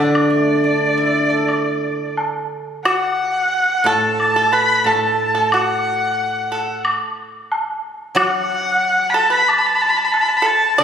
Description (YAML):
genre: chinese traditional, Chinese chamber ensemble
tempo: 90 BPM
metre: 4/4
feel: straight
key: D gong mode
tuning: A4 = 440 Hz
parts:
  - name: clear erhu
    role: melody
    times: 0.0-10.8 s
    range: D5 to B5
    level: -17 LUFS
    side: left 1 dB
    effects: none
  - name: pipa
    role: second line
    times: 0.0-10.8 s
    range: D4 to D5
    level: -21 LUFS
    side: right 4 dB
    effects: none
  - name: guzheng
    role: accompaniment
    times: 0.0-10.8 s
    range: A2 to A4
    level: -21 LUFS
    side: equal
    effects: none
  - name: woodblock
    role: percussion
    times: 0.2-10.8 s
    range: none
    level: -23 LUFS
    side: left 1 dB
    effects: none
room: moderate concert hall reverb, RT60 1.9 s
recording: recorded on a phone in the room, studio reverb, compression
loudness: -15 LUFS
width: side -8 dB against mid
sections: 0.0-2.8 A section; 2.8-10.8 B section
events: none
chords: none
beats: | 0.14 0.81 1.48 2.17 | 2.85 3.52 4.19 4.86 | 5.52 6.18 6.85 7.51 | 8.17 8.82 9.49 10.15 | 10.81